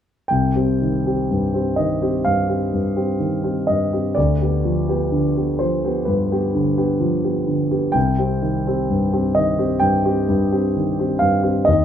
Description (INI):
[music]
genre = classical, romantic character piece for solo piano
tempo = 64 BPM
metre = 4/4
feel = rubato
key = C minor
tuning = A4 = 440 Hz
[part]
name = warm concert grand piano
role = solo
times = 0.3-11.8 s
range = C2 to G5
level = -17 LUFS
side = equal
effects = none
[sound]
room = light reverb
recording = close, detailed microphones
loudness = -17 LUFS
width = side -9 dB against mid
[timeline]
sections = 0.3-11.8 A section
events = none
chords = 0.3 Cm; 4.2 G7/D; 8.0 Cm